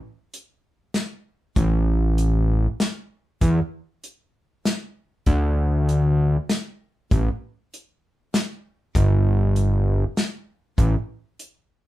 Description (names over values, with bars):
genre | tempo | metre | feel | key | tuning
klezmer | 98 BPM | 3/4 | straight | unclear | A4 = 440 Hz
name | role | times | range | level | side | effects
warm soul drum kit | drums | 0.3-11.5 s | hi-hat, kick drum, snare drum | -22 LUFS | left 1 dB | none
fat analog bass | bass | 1.6-11.0 s | G1 to E2 | -18 LUFS | equal | none
room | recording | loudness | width
moderate studio ambience, RT60 0.5 s | band playing live in one room | -20 LUFS | side -16 dB against mid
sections
0.0-11.9 A section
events
none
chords
none